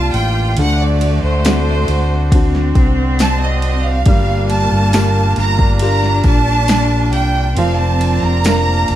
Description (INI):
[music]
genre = pop ballad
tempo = 69 BPM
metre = 4/4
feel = straight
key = unclear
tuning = A4 = 437 Hz
[part]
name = clear chamber violin section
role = melody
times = 0.0-9.0 s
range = C5 to Bb5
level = -19 LUFS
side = right 3 dB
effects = none
[part]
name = rich studio cello section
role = second line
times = 0.0-9.0 s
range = A3 to F4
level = -22 LUFS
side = left 1 dB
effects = digital delay
[part]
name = warm concert grand piano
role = accompaniment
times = 0.0-9.0 s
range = D3 to D5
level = -23 LUFS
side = left 2 dB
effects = none
[part]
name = accordion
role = sustained chords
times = 0.0-9.0 s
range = D3 to D5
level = -27 LUFS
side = right 4 dB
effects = none
[part]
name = fingerpicked steel-string acoustic guitar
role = arpeggios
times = 0.0-9.0 s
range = G2 to Bb4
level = -26 LUFS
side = right 3 dB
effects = none
[part]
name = fingered electric bass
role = bass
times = 0.0-9.0 s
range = F1 to D2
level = -16 LUFS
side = equal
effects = none
[part]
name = deep house drum kit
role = drums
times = 0.1-9.0 s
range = kick drum, ride cymbal, snare drum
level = -16 LUFS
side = equal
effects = overdrive
[part]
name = tambourine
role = percussion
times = 1.4-8.7 s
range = none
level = -30 LUFS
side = left 10 dB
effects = none
[sound]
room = studio reverb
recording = dark, warm production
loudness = -12 LUFS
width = side -12 dB against mid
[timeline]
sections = 0.0-9.0 A section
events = none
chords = 0.0 Bbmaj7; 0.6 D7; 4.1 Gm7; 7.6 Bb/F